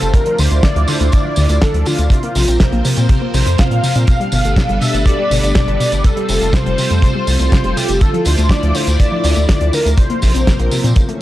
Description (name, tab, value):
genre	italo disco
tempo	122 BPM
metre	4/4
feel	straight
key	D minor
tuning	A4 = 440 Hz
part	wide unison lead	melody	0.0-10.5 s	F4 to F5	-20 LUFS	equal	ensemble chorus, analog delay
part	string machine, full ensemble	sustained chords	0.0-11.2 s	E3 to D5	-22 LUFS	equal	phaser, ensemble chorus
part	warbly dusty pluck	arpeggios	0.0-11.2 s	B2 to C4	-21 LUFS	left 2 dB	chorus, cassette tape, analog delay
part	round analog bass	bass	0.0-10.9 s	F1 to Bb2	-16 LUFS	equal	none
part	damped 70s drum kit	drums	0.0-11.2 s	hi-hat, snare drum, tambourine	-21 LUFS	right 1 dB	none
part	kick drum	drums	0.1-11.1 s	none	-12 LUFS	equal	none
room	little or no reverb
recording	dry, gritty hardware recording, transformer saturation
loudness	-12 LUFS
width	side -15 dB against mid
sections	0.0-11.2 A section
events	none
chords	0.1 Dmadd9; 2.1 Bbsus2; 4.1 Gadd9; 6.0 Fadd9; 8.0 Dmadd9; 10.0 Bbsus2